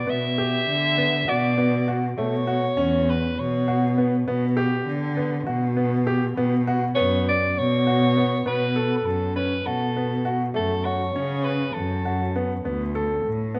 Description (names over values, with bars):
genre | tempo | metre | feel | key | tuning
contemporary instrumental, chamber music in an uneven meter | 201 BPM (eighths) | 7/8 | straight | unclear | A4 = 440 Hz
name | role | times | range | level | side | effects
breathy soprano saxophone | melody | 0.0-12.4 s | A4 to E5 | -28 LUFS | equal | none
clear baby grand piano | arpeggios | 0.1-13.6 s | A3 to A4 | -29 LUFS | equal | none
rich cello | bass | 0.1-13.6 s | D2 to D3 | -26 LUFS | equal | none
room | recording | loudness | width
moderate concert hall reverb, RT60 1.8 s | none | -23 LUFS | mono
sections
0.0-8.5 A section; 8.5-13.6 B section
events
none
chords
0.1 Gmaj7/B; 2.2 Aadd9 (rootless); 4.3 G/B; 6.4 B5; 8.5 F#m; 12.6 D5